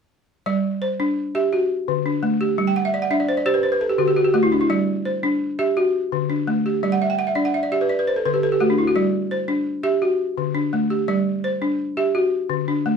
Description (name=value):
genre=west african traditional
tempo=113 BPM (dotted quarters)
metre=12/8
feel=straight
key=G major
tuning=A4 = 438 Hz
part: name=balafon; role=arpeggios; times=0.5-13.0 s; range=D3 to G5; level=-18 LUFS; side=equal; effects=none
room=moderate small room reverb, RT60 0.5 s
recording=none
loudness=-19 LUFS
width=side -6 dB against mid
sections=0.5-13.0 A section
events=balafon fill 2.7-4.7, 6.8-8.9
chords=0.5 G5; 1.5 D; 2.6 G5; 3.6 D5; 4.7 G5; 5.8 D; 6.8 G5; 7.9 D5; 8.9 G5; 10.0 D; 11.1 G5; 12.1 D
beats=| 0.46 0.99 1.52 2.05 | 2.58 3.11 3.64 4.17 | 4.70 5.23 5.76 6.29 | 6.82 7.35 7.88 8.42 | 8.95 9.48 10.01 10.54 | 11.08 11.61 12.14 12.68